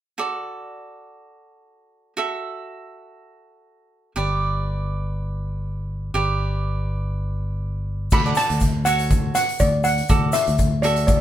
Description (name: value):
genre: calypso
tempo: 121 BPM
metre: 4/4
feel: swing 53% on 16ths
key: D major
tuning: A4 = 440 Hz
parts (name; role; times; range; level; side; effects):
- cavaquinho; accompaniment; 0.2-11.2 s; F#4 to E5; -27 LUFS; right 4 dB; none
- modern bright fingered electric bass; bass; 4.2-11.2 s; G1 to D2; -24 LUFS; equal; none
- steel pan; melody; 8.1-11.2 s; D5 to B5; -21 LUFS; equal; none
- street-band drum kit; drums; 8.1-11.2 s; crash cymbal, hi-hat, kick drum, rim click; -21 LUFS; equal; none
- egg shaker; percussion; 8.1-11.2 s; none; -33 LUFS; left 9 dB; none
room: moderate studio reverb, RT60 0.6 s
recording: band playing live in one room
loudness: -20 LUFS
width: side -12 dB against mid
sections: 0.2-8.1 A section; 8.1-11.2 B section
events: none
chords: 0.2 D; 4.2 G; 8.1 D